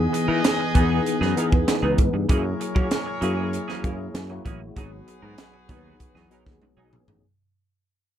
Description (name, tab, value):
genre	polished 1980s jazz-funk pop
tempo	97 BPM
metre	4/4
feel	straight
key	unclear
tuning	A4 = 441 Hz
part	clear horn section	second line	0.0-6.9 s	F#4 to D#5	-30 LUFS	equal	none
part	tine electric piano	accompaniment	0.0-7.3 s	E3 to B4	-26 LUFS	left 2 dB	overdrive, fast stereo tremolo, ensemble chorus
part	sustaining fretless electric bass	bass	0.0-7.2 s	G#1 to F#3	-26 LUFS	equal	none
part	semi-hollow electric guitar	riff	0.1-7.1 s	E3 to A#4	-32 LUFS	right 6 dB	lush chorus
part	crisp fusion drum kit	drums	0.1-7.2 s	hi-hat, kick drum, snare drum, toms	-23 LUFS	right 1 dB	none
room	little or no reverb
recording	none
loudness	-20 LUFS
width	side -10 dB against mid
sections	0.0-7.2 A section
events	fade-out 0.0-7.2; drum fill 6.6-7.2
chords	0.0 Emaj7; 2.3 F#9; 4.8 G#m7